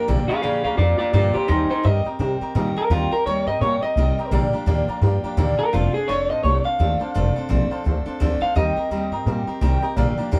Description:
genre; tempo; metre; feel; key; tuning
rockabilly; 170 BPM; 4/4; swing 60% on 8ths; unclear; A4 = 442 Hz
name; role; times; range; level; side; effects
electric guitar through a small old amp; melody; 0.0-9.2 s; Eb4 to F5; -24 LUFS; equal; none
picked steel-string acoustic guitar; accompaniment; 0.0-10.4 s; Bb2 to Bb4; -28 LUFS; equal; none
warm upright piano; accompaniment; 0.0-10.4 s; C5 to C6; -35 LUFS; equal; none
upright bass; bass; 0.1-10.4 s; F1 to C3; -23 LUFS; equal; none
room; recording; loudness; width
light reverb; band playing live in one room; -21 LUFS; mono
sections
0.0-10.4 A section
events
clean electric guitar solo 0.0-10.4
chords
0.0 Bb6; 1.5 Eb6; 4.3 Bb6; 5.7 F6; 8.6 Eb6

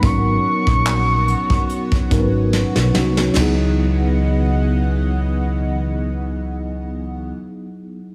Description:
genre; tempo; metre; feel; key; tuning
contemporary R&B; 72 BPM; 4/4; swing 54% on 16ths; C# dorian; A4 = 440 Hz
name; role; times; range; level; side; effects
gliding portamento lead; melody; 0.0-2.5 s; C#6; -23 LUFS; equal; chorus, tape echo
mellow tine electric piano; accompaniment; 0.0-8.1 s; F#3 to B4; -24 LUFS; equal; none
chorused pulse-width pad; sustained chords; 0.0-7.3 s; C#3 to F#5; -30 LUFS; equal; none
fingered electric bass; bass; 0.0-7.3 s; G#1 to C#2; -22 LUFS; equal; none
soft brush drum kit; drums; 0.0-3.6 s; crash cymbal, handclaps, hi-hat, kick drum, snare drum, toms; -23 LUFS; equal; none
room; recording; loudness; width
small room ambience; none; -18 LUFS; mono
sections
0.0-3.4 A section; 3.4-6.7 B section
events
drum fill 2.5-3.4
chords
0.0 G#m11; 3.4 C#m11

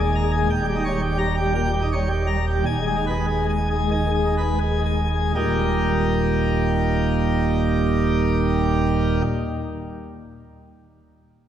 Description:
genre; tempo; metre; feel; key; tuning
classical, organ toccata; 77-120 BPM; 4/4; straight; Eb major; A4 = 441 Hz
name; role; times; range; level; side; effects
pipe organ, plenum; solo; 0.0-9.2 s; Eb1 to Bb5; -19 LUFS; equal; none
room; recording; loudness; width
wet church reverb, RT60 3.2 s; none; -19 LUFS; side -10 dB against mid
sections
0.0-5.4 A section; 5.4-11.5 B section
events
slowing down 0.0-5.4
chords
0.0 Bb7(no3)/Eb; 0.5 Eb7; 2.7 Abm/Eb; 5.4 Eb

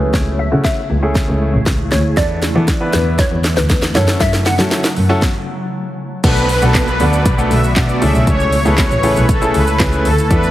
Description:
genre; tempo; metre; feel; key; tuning
dance-pop; 118 BPM; 4/4; straight; unclear; A4 = 440 Hz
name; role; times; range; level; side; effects
glassy wavetable pluck; melody; 0.0-5.4 s; B4 to F#5; -22 LUFS; left 1 dB; chorus, low-pass filter, tape echo
clear grand piano; accompaniment; 0.0-10.5 s; A3 to B4; -20 LUFS; equal; sidechain pumping, low-pass filter
granular cloud pad; sustained chords; 0.0-10.5 s; C#3 to G#4; -25 LUFS; equal; built-in reverb, sidechain pumping, low-pass filter
rich double bass; bass; 0.0-10.5 s; A1 to F#3; -16 LUFS; equal; sidechain pumping
house drum kit; drums; 0.1-10.5 s; crash cymbal, handclaps, hi-hat, kick drum, shaker, snare drum; -17 LUFS; equal; none
supersaw pad; melody; 6.2-10.5 s; A4 to E5; -18 LUFS; equal; tape echo
downlifter; sound effects; 6.2-10.3 s; none; -26 LUFS; right 1 dB; none
room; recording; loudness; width
light reverb, digital ambience; heavily compressed radio sound, multiband compression; -12 LUFS; side -14 dB against mid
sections
0.0-6.2 A section; 6.2-10.5 B section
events
build-up 0.0-6.2; drum fill 0.0-5.2; filter sweep 0.0-6.2; stop 5.2-6.2; drop 6.2-10.5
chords
0.0 Amaj7/C#; 2.2 E7sus4; 4.0 F#m7; 6.2 Bm7; 8.0 Amaj7

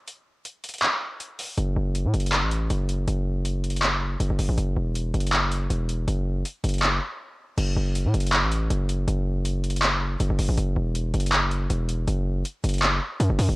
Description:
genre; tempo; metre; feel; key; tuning
hip hop, trap; 160 BPM; 4/4; half-time; F# minor; A4 = 438 Hz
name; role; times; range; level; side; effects
trap drum kit; drums; 0.1-13.5 s; crash cymbal, handclaps, hi-hat; -26 LUFS; equal; overdrive, cassette tape
distorted 808-style bass; bass; 1.6-13.6 s; E1 to A2; -23 LUFS; equal; distortion
room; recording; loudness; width
light reverb; home recording on cassette; -22 LUFS; side -22 dB against mid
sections
0.0-7.6 A section; 7.6-13.6 B section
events
break 0.0-1.6, 7.2-7.6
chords
none

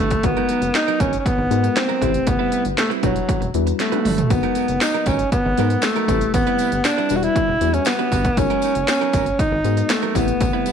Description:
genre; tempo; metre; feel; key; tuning
early-eighties boogie funk; 118 BPM; 4/4; straight; unclear; A4 = 440 Hz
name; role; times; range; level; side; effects
warm alto saxophone; melody; 0.0-10.7 s; F#3 to F#4; -20 LUFS; equal; none
clean electric guitar; riff; 0.0-10.7 s; F#3 to B4; -28 LUFS; right 13 dB; wide subtle chorus
rubbery square bass; bass; 0.0-10.5 s; E1 to G#2; -24 LUFS; equal; none
techno drum kit; drums; 0.1-10.7 s; hi-hat, kick drum, snare drum, toms; -22 LUFS; equal; none
mellow FM electric piano; accompaniment; 0.2-10.7 s; C3 to B4; -25 LUFS; left 13 dB; chorus
tambourine; percussion; 4.3-10.7 s; none; -37 LUFS; left 15 dB; none
room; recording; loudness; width
light reverb; 1960s-style stereo with parts hard left and right; -17 LUFS; side -7 dB against mid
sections
0.0-10.7 A section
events
drum fill 3.8-4.3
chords
0.2 G#m9; 2.0 Am9; 3.0 Em9; 4.3 G#m9; 6.1 Am9; 7.1 Em9; 8.4 G#m9; 10.2 Am9

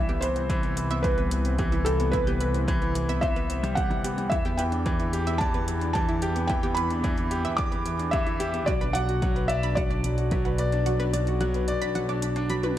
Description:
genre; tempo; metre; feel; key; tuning
piano and strings electronica; 110 BPM; 4/4; straight; unclear; A4 = 440 Hz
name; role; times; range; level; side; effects
felt-muted upright piano; melody; 0.0-12.4 s; A4 to D6; -30 LUFS; equal; digital delay
analog pluck; arpeggios; 0.0-12.8 s; E4 to B5; -36 LUFS; right 4 dB; chorus, sidechain pumping, digital delay
warm grand piano; riff; 0.0-12.8 s; E3 to D5; -28 LUFS; equal; digital delay
rich chamber double bass section; bass; 0.0-12.8 s; B1 to E2; -29 LUFS; equal; sidechain pumping
deep house drum kit; drums; 0.1-12.7 s; hi-hat, toms; -39 LUFS; left 1 dB; overdrive, studio reverb
electronic kick drum; drums; 0.5-10.4 s; none; -29 LUFS; equal; overdrive, studio reverb
room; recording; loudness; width
light reverb, small room reverb; none; -23 LUFS; side -12 dB against mid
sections
0.0-12.8 A section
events
kick drops out 10.9-12.8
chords
0.0 Cmaj7; 4.3 Em7; 8.7 Bm

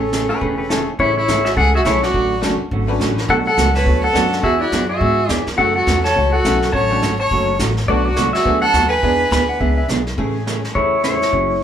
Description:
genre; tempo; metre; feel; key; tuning
country, western swing; 209 BPM; 4/4; swing 61% on 8ths; A major; A4 = 438 Hz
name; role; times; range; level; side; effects
pedal steel guitar; melody; 0.0-11.6 s; E4 to A5; -18 LUFS; left 2 dB; none
rich fiddle; second line; 0.0-9.8 s; C#4 to C#5; -21 LUFS; right 2 dB; none
hollow-body jazz guitar; accompaniment; 0.0-11.5 s; B2 to G#4; -23 LUFS; right 4 dB; none
upright bass; bass; 0.0-11.6 s; E1 to G#2; -21 LUFS; equal; none
vintage brush drum kit; drums; 0.1-11.6 s; brushed snare drum, hi-hat, kick drum, snare drum; -25 LUFS; equal; none
clean lap steel guitar; second line; 0.3-0.9, 9.3-9.9 s; G4 to B5; -25 LUFS; left 3 dB; none
tack piano; accompaniment; 0.3-11.0 s; G#3 to B4; -25 LUFS; left 4 dB; none
room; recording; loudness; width
wet small room ambience, RT60 0.5 s; band playing live in one room; -14 LUFS; side -9 dB against mid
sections
1.0-10.2 A section; 10.2-11.6 B section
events
none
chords
0.0 Amaj7; 2.1 Dmaj7; 3.3 Bm9; 4.4 E9; 5.6 F#m7; 6.7 Dmaj7; 7.9 Bm7; 9.0 E7; 10.2 Amaj7

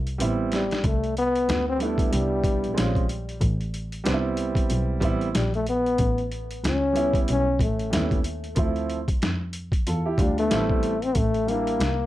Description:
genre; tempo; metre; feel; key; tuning
hip hop, jazz-hop; 93 BPM; 4/4; swing 59% on 16ths; A minor; A4 = 440 Hz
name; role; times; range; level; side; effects
rich double bass; bass; 0.0-12.1 s; A1 to F2; -28 LUFS; equal; none
boom bap sampler-style drum kit; drums; 0.1-12.0 s; hi-hat, kick drum, snare drum; -26 LUFS; equal; overdrive
dark concert grand piano; accompaniment; 0.2-11.9 s; F3 to A4; -27 LUFS; right 4 dB; plate reverb
breathy trombone; melody; 0.5-12.1 s; G3 to C#4; -25 LUFS; left 2 dB; plate reverb, analog delay
room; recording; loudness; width
moderate small room reverb, RT60 0.5 s; dark, warm production; -22 LUFS; side -15 dB against mid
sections
0.8-11.2 A section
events
drum fill 0.2-0.8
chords
0.2 Am9; 0.8 Cmaj7; 2.8 Bbm7; 3.4 Am7; 6.0 A7; 8.6 Dm7; 10.5 Am9; 11.2 A5

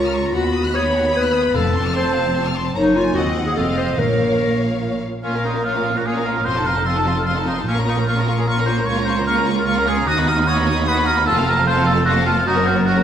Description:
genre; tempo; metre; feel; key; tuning
quick classical-period movement for symphony orchestra; 150 BPM; 3/4; straight; Bb minor; A4 = 440 Hz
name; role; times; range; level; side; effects
warm studio violin section; melody; 0.0-13.0 s; Bb4 to D#6; -27 LUFS; left 4 dB; none
rich chamber violin section; second line; 0.0-13.0 s; D#4 to F#6; -25 LUFS; left 2 dB; none
warm clarinet; second line; 0.0-4.8 s; Eb4 to Db5; -20 LUFS; left 1 dB; none
rich chamber viola section; accompaniment; 0.0-13.0 s; A3 to Eb4; -25 LUFS; equal; none
clear studio double bass section; bass; 0.0-13.0 s; F1 to D#2; -25 LUFS; right 2 dB; none
warm studio cello section; bass; 0.0-13.0 s; Db2 to Bb2; -24 LUFS; right 2 dB; none
timpani; percussion; 1.5-4.6 s; F2 to Bb2; -26 LUFS; left 1 dB; none
warm oboe; second line; 5.2-13.0 s; Db4 to Db5; -20 LUFS; right 2 dB; none
room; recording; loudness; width
wet recital hall reverb, RT60 1.7 s; recorded in a church or concert hall; -16 LUFS; side -9 dB against mid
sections
0.0-5.2 A section; 5.2-13.0 B section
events
none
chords
0.4 B/D#; 1.6 F; 2.8 Gb; 3.2 Cdim/Eb; 3.6 F7; 4.0 Bbm; 6.5 F7; 7.7 Bbm; 8.9 Bbm/Db; 10.1 B/D#; 11.3 F; 12.5 Gb

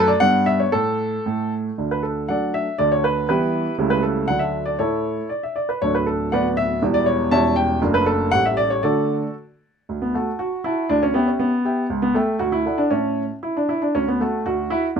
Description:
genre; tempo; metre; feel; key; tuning
classical-period piano sonatina; 118 BPM; 2/4; rubato; D major; A4 = 440 Hz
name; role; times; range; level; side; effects
warm baby grand piano; solo; 0.0-15.0 s; D1 to B5; -18 LUFS; right 1 dB; none
room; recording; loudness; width
light reverb; close, detailed microphones; -18 LUFS; side -6 dB against mid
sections
0.0-1.8 A section; 1.8-9.9 A section; 9.9-15.0 A section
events
none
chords
0.2 Gmaj7#11; 0.7 N.C.; 1.8 D; 2.8 Em7/D; 3.8 A7/C#; 4.3 D; 4.8 A; 5.8 D; 6.3 Bm/D; 6.8 Em; 7.3 C#dim/E; 7.8 D/F#; 8.3 A7; 8.8 D; 10.9 Em7/D; 11.9 A7/C#; 12.4 D; 12.9 A; 13.9 D; 14.5 Bm/D

